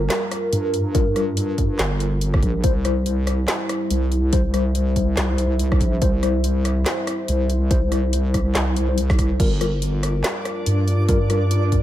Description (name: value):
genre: deep dubstep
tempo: 142 BPM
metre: 4/4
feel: swing 58% on 16ths, half-time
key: unclear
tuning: A4 = 438 Hz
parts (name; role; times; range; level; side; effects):
- dark analog pad; sustained chords; 0.0-11.8 s; G3 to C5; -27 LUFS; equal; chorus, phaser
- wobble bass; bass; 0.0-11.8 s; G1 to G2; -20 LUFS; equal; chorus
- deep house drum kit; drums; 0.1-11.8 s; crash cymbal, handclaps, hi-hat, rim click, snare drum; -27 LUFS; equal; none
- mellow tine electric piano; stabs; 0.9-11.4 s; G3 to C5; -28 LUFS; left 5 dB; medium stereo tremolo, dub echo
- electronic kick drum; drums; 0.9-11.8 s; none; -20 LUFS; equal; none
- backwards swelling texture; texture; 10.1-11.8 s; D4 to D5; -30 LUFS; right 3 dB; built-in reverb
room: light reverb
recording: none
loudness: -18 LUFS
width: side -13 dB against mid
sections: 0.0-11.8 A section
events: none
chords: 0.0 Gm7; 2.6 C; 9.4 Gm7